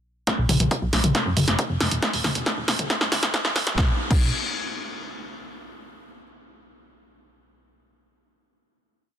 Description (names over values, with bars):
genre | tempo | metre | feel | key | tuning
uplifting trance | 137 BPM | 4/4 | straight | unclear | A4 = 440 Hz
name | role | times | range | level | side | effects
electronic kick drum | drums | 0.3-4.2 s | none | -24 LUFS | equal | high-pass filter on kick, high-pass filter on room
punchy analog drum machine | drums | 0.3-4.2 s | crash cymbal, hi-hat, snare drum, toms | -23 LUFS | equal | sidechain pumping on hats, sidechain pumping on toms, sidechain pumping on cymbals
plucky analog bass | bass | 0.4-4.3 s | D1 to G2 | -26 LUFS | equal | sidechain pumping
room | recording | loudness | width
light reverb | dense, heavily limited modern master, high-pass filter, faint mains hum | -20 LUFS | side -10 dB against mid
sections
0.3-3.8 build; 3.8-5.5 final chord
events
build-up 0.3-3.8; drum fill 0.3-3.8; filter sweep 0.3-3.8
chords
none